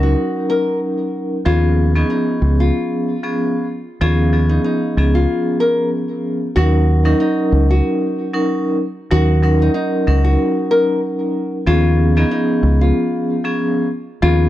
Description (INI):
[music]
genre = hip hop, boom-bap hip-hop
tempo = 94 BPM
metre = 4/4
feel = swing 56% on 16ths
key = Eb minor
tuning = A4 = 442 Hz
[part]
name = nylon-string guitar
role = melody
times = 0.0-14.5 s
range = Eb4 to Bb4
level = -21 LUFS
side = left 2 dB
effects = high-pass filter, low-pass filter, tape echo
[part]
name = vibraphone with medium hard mallets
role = accompaniment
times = 0.0-14.5 s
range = F3 to Bb4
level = -18 LUFS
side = equal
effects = high-pass filter, low-pass filter
[part]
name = deep dub fingered electric bass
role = bass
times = 0.0-14.5 s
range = Db2 to Eb2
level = -14 LUFS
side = equal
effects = transformer saturation
[sound]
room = little or no reverb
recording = dry, gritty hardware recording, transformer saturation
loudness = -14 LUFS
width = side -14 dB against mid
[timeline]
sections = 0.0-6.6 A section; 6.6-14.5 B section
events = none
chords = 0.0 Ebm7; 1.5 Db7; 6.6 Ebm7; 11.7 Db7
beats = 0.18 0.82 | 1.46 2.09 2.73 3.37 | 4.01 4.65 5.28 5.92 | 6.56 7.20 7.84 8.48 | 9.11 9.75 10.39 11.03 | 11.67 12.31 12.94 13.58 | 14.22